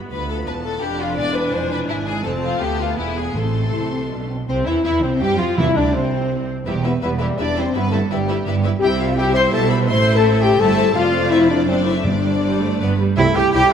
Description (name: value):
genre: quick classical-period movement for symphony orchestra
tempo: 167 BPM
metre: 3/4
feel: rubato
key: C major from 8.8 s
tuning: A4 = 440 Hz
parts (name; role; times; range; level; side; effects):
- rich studio viola section; accompaniment; 0.0-13.6 s; G3 to G4; -26 LUFS; right 2 dB; none
- mellow French horn section; sustained chords; 0.0-13.7 s; G3 to C5; -21 LUFS; left 4 dB; none
- warm studio violin section; melody; 0.1-13.6 s; G4 to C6; -29 LUFS; left 4 dB; none
- warm studio violin section; second line; 0.1-13.7 s; C4 to G5; -26 LUFS; left 4 dB; none
- rich studio cello section; bass; 0.1-13.7 s; D2 to G4; -23 LUFS; right 4 dB; none
- warm studio double bass section; bass; 0.1-13.6 s; E1 to G2; -25 LUFS; right 4 dB; none
- timpani; percussion; 1.2-6.1, 12.0-12.6 s; E2 to C3; -26 LUFS; equal; none
- mellow clarinet; second line; 13.2-13.6 s; C4 to E4; -23 LUFS; equal; none
- mellow large flute ensemble; second line; 13.2-13.7 s; E5 to G5; -20 LUFS; right 2 dB; none
- bright trumpet; stabs; 13.2-13.7 s; E4 to G4; -20 LUFS; right 2 dB; none
room: wet scoring stage reverb, RT60 2.0 s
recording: none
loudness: -16 LUFS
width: side -8 dB against mid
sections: 0.0-4.5 A section; 4.5-13.2 B section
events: none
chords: 0.1 Bm7b5; 1.2 E7; 2.3 F; 2.6 Dm; 3.0 E; 3.4 Am; 4.5 Cadd11; 5.6 Cadd9; 6.7 Em; 7.8 Em/G; 8.8 C; 9.9 Am; 11.0 Dm7/F; 11.7 D7/F#; 12.1 Gsus4; 12.8 G; 13.2 C